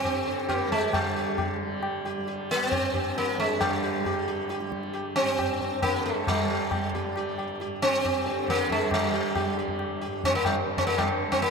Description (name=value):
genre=indian classical, Hindustani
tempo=136 BPM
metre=3/4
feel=straight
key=G raga bhairavi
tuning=A4 = 440 Hz
part: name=sitar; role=melody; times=0.0-11.5 s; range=G3 to G4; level=-26 LUFS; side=right 1 dB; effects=none
part: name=tanpura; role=drone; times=0.0-11.5 s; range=G2 to G3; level=-34 LUFS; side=equal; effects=none
part: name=tabla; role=percussion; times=0.0-11.5 s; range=none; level=-32 LUFS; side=left 2 dB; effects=none
room=wet cathedral reverb, RT60 4.9 s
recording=in a vast, echoing space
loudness=-24 LUFS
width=side -5 dB against mid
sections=0.9-11.5 A section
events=none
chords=none